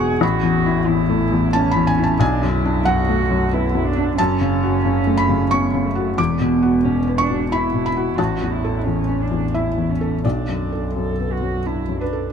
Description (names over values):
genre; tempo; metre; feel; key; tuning
neoclassical piano and strings; 90 BPM; 3/4; rubato; unclear; A4 = 441 Hz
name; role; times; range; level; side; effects
muted cello; second line; 0.0-12.3 s; A3 to A4; -23 LUFS; right 9 dB; none
felt-muted upright piano; accompaniment; 0.0-12.3 s; A1 to D6; -19 LUFS; left 2 dB; none
muted double bass; bass; 0.0-12.3 s; E1 to B1; -25 LUFS; equal; none
room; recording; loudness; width
moderate plate reverb, RT60 3.0 s; none; -17 LUFS; side -7 dB against mid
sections
0.0-12.3 A section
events
none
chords
0.2 A; 2.2 Bm7; 4.2 F#m; 6.2 Esus2; 8.2 A; 10.2 Bm7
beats
| 0.22 0.88 1.54 | 2.21 2.87 3.53 | 4.19 4.85 5.52 | 6.18 6.85 7.52 | 8.18 8.85 9.54 | 10.24 10.95 11.66